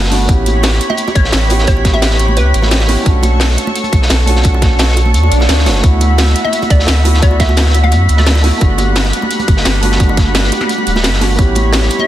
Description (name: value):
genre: liquid drum and bass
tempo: 173 BPM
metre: 4/4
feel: straight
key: unclear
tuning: A4 = 436 Hz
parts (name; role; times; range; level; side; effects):
- felt-muted upright piano; accompaniment; 0.0-12.1 s; A3 to G4; -19 LUFS; right 2 dB; tape echo
- lush unison pad; sustained chords; 0.0-12.1 s; G3 to C#6; -20 LUFS; equal; chorus, vintage 12-bit sampler grit
- saturated sub bass; bass; 0.0-11.9 s; D1 to F#2; -12 LUFS; equal; none
- crunchy breakbeat drum kit; drums; 0.0-12.0 s; hi-hat, snare drum; -20 LUFS; equal; high-pass filter on hats, studio reverb, high-pass filter on snare, high-pass filter on room
- drum and bass drum kit; drums; 0.1-12.0 s; hi-hat, snare drum; -19 LUFS; equal; overdrive, studio reverb
- bongos and congas; percussion; 0.1-12.1 s; none; -24 LUFS; right 2 dB; none
- electronic kick drum; drums; 0.3-11.5 s; none; -11 LUFS; equal; overdrive, studio reverb
- hollow square pluck; melody; 0.9-2.6, 6.4-8.4, 12.0-12.1 s; B4 to F#5; -21 LUFS; left 1 dB; chorus, vintage 12-bit sampler grit, tape echo
- swell; sound effects; 5.2-5.8 s; none; -22 LUFS; right 1 dB; none
room: small room reverb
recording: dense, heavily limited modern master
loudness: -9 LUFS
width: side -13 dB against mid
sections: 0.0-12.1 A section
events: swell 5.2-5.8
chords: 0.3 A9; 3.1 Bm9; 5.8 D69; 8.6 Gmaj7; 11.4 A9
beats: | 0.29 0.63 0.98 1.33 | 1.68 2.02 2.37 2.71 | 3.06 3.41 3.76 4.10 | 4.45 4.80 5.14 5.49 | 5.84 6.18 6.53 6.88 | 7.22 7.57 7.92 8.26 | 8.61 8.96 9.30 9.65 | 10.00 10.35 10.69 11.04 | 11.39 11.73